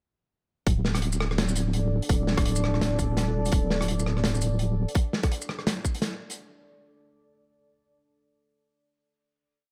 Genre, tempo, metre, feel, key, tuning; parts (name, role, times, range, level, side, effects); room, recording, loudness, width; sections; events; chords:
half-time drum and bass; 168 BPM; 4/4; swing 58% on 16ths, half-time; A4 = 437 Hz
deep dark ambient pad; sustained chords; 1.5-4.9 s; D4 to D5; -37 LUFS; equal; chorus, built-in reverb, sidechain pumping
deep soft wobble bass; bass; 0.7-4.9 s; D1 to Eb1; -28 LUFS; equal; chorus
crunchy breakbeat drum kit; drums; 0.7-6.4 s; hi-hat, rim click, shaker, snare drum; -32 LUFS; equal
electronic kick drum; drums; 0.7-5.9 s; -27 LUFS; equal; overdrive
light reverb, small room ambience; -26 LUFS; mono
0.7-6.4 drop
drop 0.7-6.4
0.7 D5